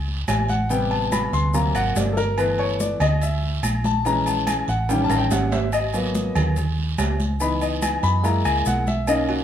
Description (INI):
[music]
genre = Afro-Cuban jazz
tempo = 143 BPM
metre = 4/4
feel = straight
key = unclear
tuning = A4 = 440 Hz
[part]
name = hollow-body short-scale fingered electric bass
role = bass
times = 0.0-9.4 s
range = G1 to F#2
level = -24 LUFS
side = equal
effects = none
[part]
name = congas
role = percussion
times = 0.1-9.4 s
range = none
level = -30 LUFS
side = equal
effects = none
[part]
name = clear concert grand piano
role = accompaniment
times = 0.3-9.4 s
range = C3 to C6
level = -22 LUFS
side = left 2 dB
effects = none
[part]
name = claves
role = percussion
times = 0.3-9.3 s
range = none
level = -36 LUFS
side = left 3 dB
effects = none
[part]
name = guiro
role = percussion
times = 0.3-9.4 s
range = none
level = -36 LUFS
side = right 8 dB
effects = none
[part]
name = maracas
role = percussion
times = 0.3-9.3 s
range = none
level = -37 LUFS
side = left 8 dB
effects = none
[part]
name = timbales and agogo bells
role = percussion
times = 0.3-9.4 s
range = none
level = -29 LUFS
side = right 5 dB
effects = none
[sound]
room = light reverb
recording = minimal, uncompressed stereo recording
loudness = -19 LUFS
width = side -10 dB against mid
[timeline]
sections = 0.0-9.4 A section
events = grand piano solo 0.0-9.4; drum fill 4.9-5.7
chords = 0.0 F#5; 0.7 Am9; 1.5 Daug7; 2.4 G69; 4.1 A#m7b5; 4.9 A7#11; 5.7 G#m9; 7.4 C#m7; 8.2 F#9